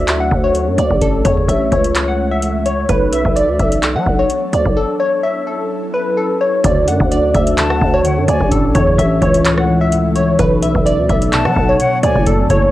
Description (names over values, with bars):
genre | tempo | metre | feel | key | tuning
hip hop, trap | 128 BPM | 4/4 | half-time | unclear | A4 = 441 Hz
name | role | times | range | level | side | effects
glassy wavetable pluck | melody | 0.0-12.7 s | A4 to F#5 | -16 LUFS | left 1 dB | chorus, low-pass filter, cassette tape, analog delay
ethereal airy pad | sustained chords | 0.0-12.7 s | E3 to A4 | -25 LUFS | right 2 dB | ensemble chorus, built-in reverb, cassette tape
growling 808-style bass | bass | 0.0-12.7 s | F#1 to F#3 | -17 LUFS | equal | none
booming analog drum machine | drums | 0.1-12.7 s | handclaps, hi-hat, kick drum, rim click | -18 LUFS | equal | cassette tape
concert harp | accompaniment | 6.6-12.7 s | F#2 to A4 | -18 LUFS | left 1 dB | low-pass filter, cassette tape
silver concert flute | second line | 7.6-8.5, 11.3-12.3 s | F#5 to A5 | -22 LUFS | left 3 dB | cassette tape, analog delay
room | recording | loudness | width
digital ambience | home recording on cassette | -12 LUFS | side -15 dB against mid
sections
0.0-6.6 A section; 6.6-12.7 B section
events
break 4.8-6.6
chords
0.0 D; 1.0 A; 2.9 Bm7; 4.8 F#m7; 6.6 D; 8.5 A; 10.4 Bm7